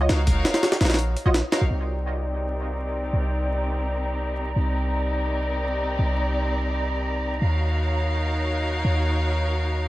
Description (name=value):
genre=drum and bass, jungle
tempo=168 BPM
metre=4/4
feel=straight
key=unclear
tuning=A4 = 440 Hz
part: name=filtered dub chord stab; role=stabs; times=0.0-1.7 s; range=F4 to Eb5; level=-31 LUFS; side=right 1 dB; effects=ensemble chorus, dub echo
part: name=warm 808-style bass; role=bass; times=0.0-9.9 s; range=Bb1 to Eb2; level=-24 LUFS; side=equal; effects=none
part: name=rich studio string section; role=sustained chords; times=0.1-9.9 s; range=C4 to F5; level=-28 LUFS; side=left 1 dB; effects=vintage 12-bit sampler grit, low-pass filter
part: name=jungle sampler-style drum kit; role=drums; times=0.1-1.6 s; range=hi-hat, kick drum, snare drum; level=-22 LUFS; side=equal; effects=none
part: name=wind-like tuned noise texture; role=texture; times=2.9-9.9 s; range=Bb5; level=-33 LUFS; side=right 1 dB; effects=built-in reverb
room=light reverb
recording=vinyl crackle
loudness=-22 LUFS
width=side -16 dB against mid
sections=0.0-1.7 A section; 1.7-9.9 B section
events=filter sweep on string section 1.7-9.9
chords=0.0 Ebm9; 1.7 Cm9; 7.4 Ebm9